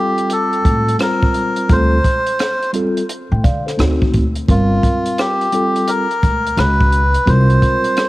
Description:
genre	hip hop, jazz-hop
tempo	86 BPM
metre	4/4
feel	swing 64% on 16ths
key	unclear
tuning	A4 = 440 Hz
part	melodica	melody	0.0-8.1 s	F4 to C5	-17 LUFS	equal	cassette tape, analog delay
part	mellow tine electric piano	accompaniment	0.0-8.1 s	G3 to G5	-20 LUFS	equal	medium stereo tremolo, cassette tape
part	compact cocktail drum kit	drums	0.2-8.1 s	hi-hat, kick drum, rim click	-18 LUFS	equal	cassette tape
part	upright bass	bass	0.7-7.6 s	G1 to D3	-16 LUFS	equal	none
room	light reverb, small room ambience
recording	home recording on cassette, vinyl crackle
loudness	-13 LUFS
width	side -18 dB against mid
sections	0.0-8.1 A section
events	none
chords	0.0 Dm7; 3.8 D7b9; 4.5 Gm7; 6.6 C#5; 7.3 C5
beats	0.30 0.99 | 1.69 2.39 3.09 3.79 | 4.48 5.18 5.88 6.58 | 7.27 7.97

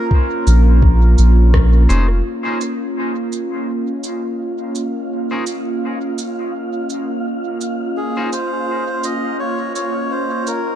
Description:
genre	ambient dub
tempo	84 BPM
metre	4/4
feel	swing 58% on 16ths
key	Bb minor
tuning	A4 = 440 Hz
part	melodica	melody	0.0-0.1, 8.0-10.8 s	Ab4 to Eb5	-24 LUFS	equal	dub echo
part	airy breathy pad	sustained chords	0.0-10.8 s	Bb3 to Eb5	-22 LUFS	right 1 dB	chorus
part	electronic kick drum	drums	0.1-1.7 s	none	-14 LUFS	equal	none
part	soft dub sub bass	bass	0.5-2.2 s	F1 to Bb1	-10 LUFS	equal	none
part	electronic shaker and rim click	drums	0.5-10.6 s	none	-29 LUFS	right 1 dB	dub echo
part	clean electric guitar	stabs	1.9-8.3 s	Db4 to C5	-29 LUFS	left 2 dB	dub echo
part	wind-like tuned noise texture	texture	3.7-10.8 s	F4 to F5	-29 LUFS	equal	built-in reverb
room	light reverb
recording	dark, warm production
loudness	-15 LUFS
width	side -11 dB against mid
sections	0.0-2.3 A section; 2.3-10.8 B section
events	band accent 1.5-1.9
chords	0.0 Bbm; 2.3 Bbmadd11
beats	0.11 0.82 1.54 | 2.25 2.97 3.68 4.40 | 5.11 5.83 6.54 7.25 | 7.97 8.68 9.40 10.11

